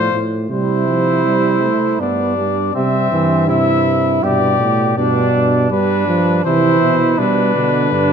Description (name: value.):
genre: classical, imitative canzona for brass ensemble.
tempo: 81 BPM.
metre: 3/4.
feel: straight.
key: C major.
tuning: A4 = 438 Hz.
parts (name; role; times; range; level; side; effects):
warm cornet; melody; 0.0-8.1 s; B4 to E5; -18 LUFS; left 10 dB; none.
warm flugelhorn; second line; 0.0-8.1 s; C4 to G4; -19 LUFS; right 7 dB; none.
warm trombone; accompaniment; 0.0-8.1 s; B2 to B3; -18 LUFS; right 3 dB; none.
mellow bass trombone; bass; 0.0-8.1 s; G2 to C3; -20 LUFS; right 2 dB; none.
room: wet recital hall reverb, RT60 1.6 s.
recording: none.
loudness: -13 LUFS.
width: side -7 dB against mid.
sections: 0.0-2.8 A section; 2.8-8.1 B section.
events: none.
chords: 0.5 Gsus4/C; 2.0 G; 2.8 C; 4.2 G; 6.4 C; 7.2 G/B.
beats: | 0.50 1.25 2.00 | 2.75 3.49 4.23 | 4.97 5.71 6.44 | 7.18 7.91.